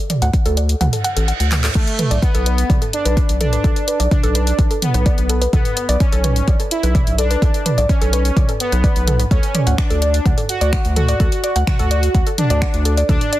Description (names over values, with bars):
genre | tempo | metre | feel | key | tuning
melodic techno | 127 BPM | 4/4 | straight | B minor | A4 = 440 Hz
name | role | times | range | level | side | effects
woody wave-folded pluck | arpeggios | 0.1-13.4 s | A4 to E#6 | -24 LUFS | equal | chorus, sidechain pumping, digital delay
deep house drum kit | drums | 0.1-13.4 s | crash cymbal, finger snaps, handclaps, hi-hat, toms | -22 LUFS | right 1 dB | sidechain pumping on hats, sidechain pumping on toms, soft clipping on snare, sidechain pumping on cymbals
round analog bass | bass | 0.2-13.2 s | A1 to D2 | -18 LUFS | equal | sidechain pumping
electronic kick drum | drums | 0.3-13.2 s | none | -16 LUFS | equal | none
reverse cymbal | sound effects | 1.0-1.8 s | none | -28 LUFS | right 6 dB | none
analog synth brass | melody | 1.8-13.4 s | A3 to F#4 | -22 LUFS | equal | chorus, sidechain pumping, digital delay
room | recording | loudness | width
little or no reverb | dense, heavily limited modern master | -14 LUFS | side -15 dB against mid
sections
0.0-13.4 A section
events
kick drops out 0.8-1.8; reverse cymbal 1.0-1.8; drum fill 1.5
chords
0.0 D; 1.8 Bm7; 9.3 D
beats
0.34 0.81 1.28 | 1.75 2.23 2.70 3.17 | 3.64 4.11 4.59 5.06 | 5.53 6.00 6.48 6.95 | 7.42 7.89 8.37 8.84 | 9.31 9.78 10.26 10.73 | 11.20 11.67 12.15 12.62 | 13.09